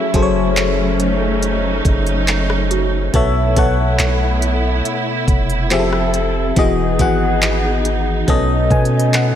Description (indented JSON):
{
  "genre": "contemporary R&B",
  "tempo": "70 BPM",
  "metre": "4/4",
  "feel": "straight",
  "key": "unclear",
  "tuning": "A4 = 442 Hz",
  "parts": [
    { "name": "FM electric piano", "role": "accompaniment", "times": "0.0-9.4 s", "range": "B2 to G#5", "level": "-18 LUFS", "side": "left 3 dB", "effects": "chorus" },
    { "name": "warm studio string section", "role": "sustained chords", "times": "0.0-9.4 s", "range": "E3 to A4", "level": "-22 LUFS", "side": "right 2 dB", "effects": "sidechain pumping" },
    { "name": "long sustained 808-style bass", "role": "bass", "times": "0.1-9.3 s", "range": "E1 to B2", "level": "-19 LUFS", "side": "right 1 dB", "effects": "none" },
    { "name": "smooth R&B drum kit", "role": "drums", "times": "0.1-9.3 s", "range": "handclaps, hi-hat, kick drum, rim click", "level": "-19 LUFS", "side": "right 1 dB", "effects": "none" },
    { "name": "soft synth bell", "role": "texture", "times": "2.7-9.4 s", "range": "F#4 to D#5", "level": "-27 LUFS", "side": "right 6 dB", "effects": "chorus, digital delay" }
  ],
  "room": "light reverb",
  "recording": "none",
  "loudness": "-14 LUFS",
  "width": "side -10 dB against mid",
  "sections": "0.0-9.4 A section",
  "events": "FM electric piano fill 8.3-9.4",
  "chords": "0.0 F#m7; 3.1 B7sus4; 5.7 Fmaj7; 6.6 Emaj7; 8.3 B7"
}